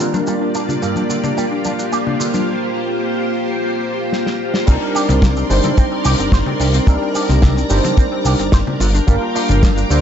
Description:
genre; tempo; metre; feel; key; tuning
nu-disco, nu disco; 109 BPM; 4/4; straight; C minor; A4 = 441 Hz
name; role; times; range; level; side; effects
barky tine electric piano; accompaniment; 0.0-10.0 s; G3 to C5; -20 LUFS; equal; ensemble chorus, sidechain pumping, ping-pong delay
string machine, full ensemble; sustained chords; 0.0-10.0 s; Bb3 to D6; -21 LUFS; equal; ensemble chorus, sidechain pumping
analog pluck; arpeggios; 0.0-10.0 s; Bb3 to F4; -26 LUFS; equal; chorus, sidechain pumping, ping-pong delay
electric guitar with an envelope filter; riff; 0.0-10.0 s; G2 to C5; -26 LUFS; right 4 dB; wide subtle chorus, vintage 12-bit sampler grit, low-pass filter, ping-pong delay
damped 70s drum kit; drums; 0.0-10.0 s; crash cymbal, hi-hat, shaker, snare drum; -25 LUFS; left 2 dB; small room ambience
congas; percussion; 0.1-9.7 s; none; -25 LUFS; left 3 dB; none
fat analog bass; bass; 4.7-10.0 s; G1 to D2; -16 LUFS; equal; none
kick drum; drums; 4.7-9.7 s; none; -12 LUFS; equal; small room ambience
room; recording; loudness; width
moderate plate reverb, RT60 1.4 s, small room reverb; dreamy mix soaked in reverb, nothing above 7.8 kHz; -14 LUFS; side -8 dB against mid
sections
0.0-4.7 A section; 4.7-10.0 B section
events
drum fill 4.1-4.7; drop 4.7-10.0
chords
0.0 Gm7; 4.7 Cm9; 8.8 Gm7

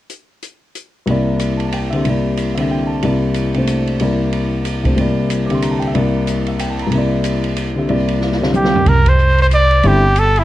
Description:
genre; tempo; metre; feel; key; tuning
modal jazz; 185 BPM; 3/4; swing 61% on 8ths; C mixolydian; A4 = 441 Hz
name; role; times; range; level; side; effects
open jazz drum kit; drums; 0.1-10.4 s; hi-hat, kick drum, ride cymbal, snare drum, toms; -23 LUFS; right 2 dB; none
clear concert grand piano; accompaniment; 1.1-10.0 s; C2 to D6; -16 LUFS; left 1 dB; none
bright trumpet; melody; 8.6-10.4 s; E4 to D5; -14 LUFS; equal; analog delay, plate reverb
upright bass; bass; 8.9-10.4 s; G1 to C2; -13 LUFS; right 1 dB; none
room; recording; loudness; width
moderate studio reverb, RT60 0.5 s; cassette tape; -14 LUFS; side -14 dB against mid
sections
1.1-8.9 A section; 8.9-10.4 B section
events
drum fill 8.2-8.9; band accent 9.0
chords
0.1 N.C.; 1.1 C9; 8.9 Csus2

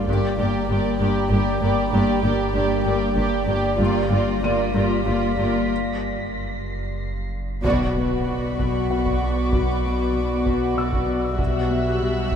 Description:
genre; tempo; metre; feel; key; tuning
cinematic, suspense film score; 96 BPM; 3/4; straight; B minor from 7.6 s; A4 = 440 Hz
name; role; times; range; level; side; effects
warm symphonic violin section; melody; 0.0-12.4 s; D5 to E5; -29 LUFS; right 2 dB; none
warm symphonic violin section; second line; 0.0-12.4 s; F4 to G4; -29 LUFS; right 1 dB; none
dark studio viola section; accompaniment; 0.0-12.4 s; G3 to B3; -28 LUFS; left 2 dB; none
glass harmonica; sustained chords; 0.0-12.4 s; F#4 to G5; -31 LUFS; left 3 dB; none
Celtic harp; riff; 0.0-12.4 s; G2 to B3; -28 LUFS; left 3 dB; none
rich symphonic double bass section; bass; 0.0-12.4 s; G1 to B1; -28 LUFS; equal; none
warm symphonic cello section; bass; 0.0-12.4 s; G2 to B2; -28 LUFS; right 1 dB; none
deep rumbling drone; drone; 0.0-12.4 s; F#1 to B1; -28 LUFS; right 1 dB; built-in reverb, lush chorus
felt-muted upright piano; texture; 0.0-0.1, 4.4-5.7, 8.9-12.4 s; F#5 to Eb7; -36 LUFS; left 2 dB; none
solo taiko drums; drums; 0.1-12.4 s; none; -29 LUFS; right 1 dB; none
warm symphonic violin section; texture; 0.1-12.4 s; Bb5 to B6; -35 LUFS; equal; none
impact; sound effects; 7.6-9.5 s; none; -36 LUFS; equal; none
room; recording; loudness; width
wet cathedral reverb, RT60 5.8 s; in a vast, echoing space; -19 LUFS; side -8 dB against mid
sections
0.0-7.6 A section; 7.6-12.4 B section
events
break 5.7-7.6; band accent 7.6-8.3; impact 7.6-9.5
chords
0.1 Gm; 3.8 Bb6/G; 5.7 F#; 7.6 Bm; 11.4 Emadd9/B

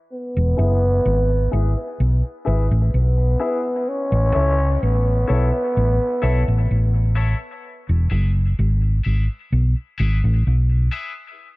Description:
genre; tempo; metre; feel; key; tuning
dub reggae; 64 BPM; 4/4; straight; E major; A4 = 440 Hz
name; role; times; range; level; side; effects
growling trombone; melody; 0.1-7.2 s; B3 to C#4; -23 LUFS; equal; low-pass filter, dub echo
hollow-body short-scale fingered electric bass; bass; 0.4-10.9 s; E1 to C#2; -17 LUFS; equal; none
clear concert grand piano; stabs; 0.6-11.1 s; E4 to E5; -30 LUFS; left 4 dB; high-pass filter, low-pass filter, dub echo
room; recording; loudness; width
small room ambience; echo-heavy mix; -17 LUFS; side -21 dB against mid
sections
0.1-11.6 A section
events
filter sweep 0.1-11.6; filter sweep on grand piano 3.9-11.4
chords
0.1 E; 3.9 A; 7.6 E

